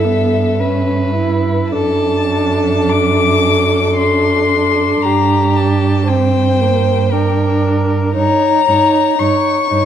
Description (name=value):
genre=classical, slow romantic movement for string quartet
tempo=48-59 BPM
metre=3/4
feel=rubato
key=G minor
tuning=A4 = 440 Hz
part: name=warm violin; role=melody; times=0.0-9.9 s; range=E5 to D6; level=-18 LUFS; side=left 7 dB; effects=none
part: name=dark violin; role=second line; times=0.0-9.9 s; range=G4 to C#5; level=-18 LUFS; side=left 1 dB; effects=none
part: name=dark viola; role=accompaniment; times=0.0-9.9 s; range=Bb3 to E4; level=-18 LUFS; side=right 2 dB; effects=none
part: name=warm cello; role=bass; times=0.0-9.8 s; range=F#2 to G2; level=-17 LUFS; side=right 4 dB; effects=none
room=moderate scoring stage reverb, RT60 2.0 s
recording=dark, warm production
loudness=-12 LUFS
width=side -9 dB against mid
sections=0.0-9.9 A section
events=none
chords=0.0 A7/G; 1.7 D/F#; 5.0 Gm; 8.2 D#7